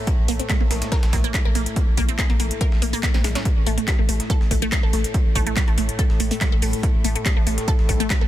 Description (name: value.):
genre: driving peak-time techno.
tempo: 142 BPM.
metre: 4/4.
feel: straight.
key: unclear.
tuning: A4 = 439 Hz.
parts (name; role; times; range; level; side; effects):
analog drone; drone; 0.0-8.3 s; A2 to A3; -31 LUFS; left 1 dB; chorus, sidechain pumping.
breakbeat sampler-style drum kit; drums; 0.1-8.2 s; hi-hat, snare drum; -36 LUFS; right 1 dB; none.
electronic kick drum; drums; 0.1-8.2 s; none; -20 LUFS; equal; none.
techno drum kit; drums; 0.1-8.2 s; handclaps, hi-hat, snare drum; -28 LUFS; equal; none.
saturated sub bass; bass; 0.2-8.3 s; A1 to Bb1; -24 LUFS; equal; overdrive, sidechain pumping, low-pass filter.
resonant blip pluck; riff; 0.3-8.3 s; G3 to Bb4; -27 LUFS; equal; phaser, sidechain pumping, tape echo.
room: digital ambience.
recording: dense, heavily limited modern master.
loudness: -18 LUFS.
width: side -13 dB against mid.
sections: 0.0-8.3 A section.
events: drum fill 3.0-3.5.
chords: none.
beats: | 0.07 0.50 0.92 1.34 | 1.76 2.19 2.61 3.03 | 3.45 3.88 4.30 4.72 | 5.14 5.57 5.99 6.41 | 6.83 7.26 7.68 8.10.